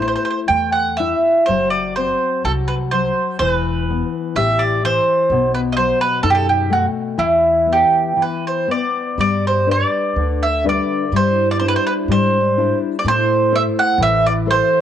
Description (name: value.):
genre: fado-style ballad.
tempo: 62 BPM.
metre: 2/4.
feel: rubato.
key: E minor, G major from 9.2 s.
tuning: A4 = 443 Hz.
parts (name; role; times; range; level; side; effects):
mandolin; melody; 0.0-14.8 s; E4 to G5; -16 LUFS; right 2 dB; cassette tape.
nylon-string guitar; accompaniment; 0.0-14.8 s; B2 to C5; -22 LUFS; left 9 dB; cassette tape.
upright bass; bass; 0.0-14.6 s; E1 to A2; -23 LUFS; right 1 dB; none.
picked twelve-string acoustic guitar; second line; 9.2-14.8 s; E4 to F#4; -26 LUFS; right 10 dB; cassette tape.
room: light reverb.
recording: home recording on cassette.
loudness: -15 LUFS.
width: side -10 dB against mid.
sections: 0.0-9.2 A section; 9.2-14.8 B section.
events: break 8.2-9.2.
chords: 0.0 A5; 1.5 F#(b5, no3); 3.4 Em; 5.3 B7; 7.2 E5; 9.2 G; 11.1 Cadd9/G; 13.0 Am.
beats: 0.48 | 1.47 2.44 | 3.40 4.36 | 5.30 6.24 | 7.18 8.17 | 9.18 10.16 | 11.12 12.08 | 13.04 13.99.